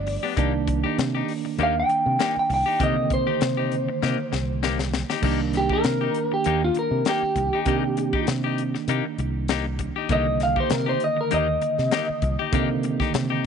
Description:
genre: straight-eighth soul blues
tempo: 99 BPM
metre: 4/4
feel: swing 54% on 16ths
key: C minor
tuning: A4 = 440 Hz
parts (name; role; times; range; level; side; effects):
- electric guitar through a small old amp; melody; 0.0-13.1 s; F4 to G5; -24 LUFS; equal; warbly pitch drift
- barky tine electric piano; accompaniment; 0.0-13.5 s; D3 to D4; -29 LUFS; right 11 dB; fast stereo tremolo
- fingered electric bass; bass; 0.0-13.5 s; G1 to C3; -26 LUFS; equal; none
- clean electric guitar; stabs; 0.1-13.5 s; Bb3 to G4; -29 LUFS; left 13 dB; none
- tight funk drum kit; drums; 0.1-13.3 s; crash cymbal, hi-hat, kick drum, snare drum; -28 LUFS; left 4 dB; none
room: little or no reverb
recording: 1960s-style stereo with parts hard left and right, nothing above 10.9 kHz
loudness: -21 LUFS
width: side -7 dB against mid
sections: 0.0-5.2 A section; 5.2-13.5 B section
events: drum fill 4.0-5.2; clean electric guitar solo 5.2-13.5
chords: 0.4 Cm7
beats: | 0.37 0.98 1.59 2.19 | 2.80 3.41 4.01 4.62 | 5.23 5.84 6.45 7.06 | 7.67 8.27 8.88 9.49 | 10.10 10.71 11.32 11.93 | 12.54 13.14

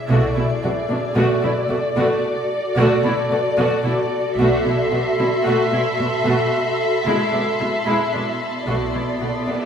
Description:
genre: cinematic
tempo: 56 BPM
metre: 4/4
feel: straight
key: unclear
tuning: A4 = 442 Hz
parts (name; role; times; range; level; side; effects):
- dark studio violin section; melody; 0.0-9.7 s; D5 to E5; -24 LUFS; left 1 dB; none
- granular cloud pad; sustained chords; 0.0-9.7 s; B3 to E5; -24 LUFS; equal; built-in reverb
- rich studio viola section; accompaniment; 0.1-9.6 s; G#3 to F#4; -22 LUFS; equal; none
- dark studio cello section; bass; 0.1-9.6 s; B2; -24 LUFS; right 1 dB; none
- rich studio double bass section; bass; 0.1-8.9 s; B1; -26 LUFS; right 1 dB; none
- rich studio violin section; texture; 4.4-9.7 s; A5 to C6; -28 LUFS; left 2 dB; none
- cymbal swell; sound effects; 9.4-9.7 s; none; -36 LUFS; equal; none
room: wet recital hall reverb, RT60 1.5 s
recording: recorded in a church or concert hall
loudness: -17 LUFS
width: side -8 dB against mid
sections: 0.0-9.7 A section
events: none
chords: 0.1 Bm7; 4.4 F#m7/B; 6.5 E; 8.7 Bm7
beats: | 0.09 1.16 2.23 3.31 | 4.38 5.45 6.52 7.59 | 8.66

